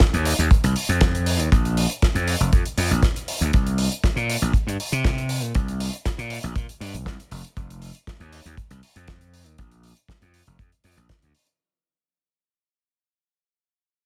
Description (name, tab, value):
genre	nu-disco, nu disco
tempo	119 BPM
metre	4/4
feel	straight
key	unclear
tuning	A4 = 442 Hz
part	damped 70s drum kit	drums	0.0-11.6 s	hi-hat, snare drum	-30 LUFS	equal	studio reverb
part	kick drum	drums	0.0-11.2 s	none	-22 LUFS	equal	studio reverb
part	gritty slap bass	bass	0.1-11.3 s	F1 to C3	-26 LUFS	equal	overdrive
room	little or no reverb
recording	none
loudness	-22 LUFS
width	mono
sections	0.0-11.6 A section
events	fade-out 0.0-11.6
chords	none